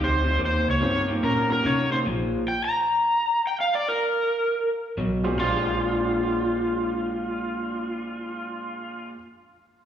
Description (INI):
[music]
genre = electric blues shuffle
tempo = 144 BPM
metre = 4/4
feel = swing 64% on 8ths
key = Bb mixolydian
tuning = A4 = 440 Hz
[part]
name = overdriven slide guitar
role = melody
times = 0.0-9.1 s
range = F4 to Bb5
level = -24 LUFS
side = equal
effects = slapback echo, analog delay
[part]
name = electric guitar through a small old amp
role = riff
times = 0.0-2.4, 5.0-9.2 s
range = F2 to G4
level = -28 LUFS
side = left 1 dB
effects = slapback echo
[part]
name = vintage muted fingered electric bass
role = bass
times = 0.0-2.3, 5.0-9.1 s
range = Bb1 to C3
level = -28 LUFS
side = equal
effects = none
[part]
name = bright grand piano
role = accompaniment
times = 0.8-1.6, 5.2-9.2 s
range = Bb2 to Db5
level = -33 LUFS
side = right 7 dB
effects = slapback echo
[sound]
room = digital ambience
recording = live gig heard through the venue's PA, recital hall reverb, small room ambience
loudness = -22 LUFS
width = side -9 dB against mid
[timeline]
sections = 0.0-5.4 A section; 5.4-8.7 B section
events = none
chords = 0.4 Eb13; 2.1 Bb5; 5.0 B5; 5.4 Bb13